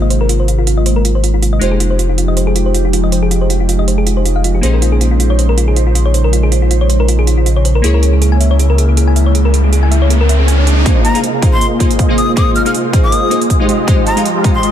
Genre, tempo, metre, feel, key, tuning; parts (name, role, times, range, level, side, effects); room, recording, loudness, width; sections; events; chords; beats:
future bass; 159 BPM; 4/4; swing 55% on 16ths, half-time; Ab major; A4 = 441 Hz
glassy digital keys; accompaniment; 0.0-14.6 s; Ab3 to F5; -21 LUFS; left 3 dB; chorus, sidechain pumping, dub echo
airy breathy pad; sustained chords; 0.0-14.7 s; C3 to C5; -19 LUFS; right 1 dB; chorus, phaser, sidechain pumping
thumb-piano-like synth pluck; arpeggios; 0.0-10.8 s; F4 to Ab5; -20 LUFS; left 3 dB; chorus, sidechain pumping, dub echo
saturated sub bass; bass; 0.0-10.8 s; F1 to Db2; -12 LUFS; equal; sidechain pumping
electronic hi-hat; drums; 0.1-14.7 s; -22 LUFS; right 5 dB
riser; sound effects; 8.9-10.9 s; -21 LUFS; right 2 dB
supersaw chords; riff; 10.9-14.7 s; Ab3 to F5; -18 LUFS; right 1 dB; phaser, cassette tape, sidechain pumping, low-pass filter
electronic kick drum; drums; 10.9-14.5 s; -12 LUFS; equal
breathy bright jazz flute; melody; 11.0-14.7 s; Bb5 to F6; -17 LUFS; left 3 dB; sidechain pumping, digital delay
little or no reverb; dense, heavily limited modern master; -10 LUFS; side -10 dB against mid
0.0-10.9 A section; 10.9-14.7 B section
filter sweep on synth arpeggio sound 0.0-10.9; filter sweep on analog synth pad 0.0-10.9; riser 8.9-10.9; build-up 10.9-14.7; filter sweep on supersaw synth 10.9-14.7
0.0 Ab69; 1.6 Fm9; 4.6 Bbm11; 7.8 Dbm6; 10.9 Ab69; 13.7 Fm9
| 0.29 0.67 1.05 1.43 | 1.80 2.18 2.56 2.93 | 3.31 3.69 4.07 4.44 | 4.82 5.20 5.58 5.95 | 6.33 6.71 7.08 7.46 | 7.84 8.22 8.59 8.97 | 9.35 9.73 10.10 10.48 | 10.86 11.24 11.61 11.99 | 12.37 12.74 13.12 13.50 | 13.88 14.26 14.63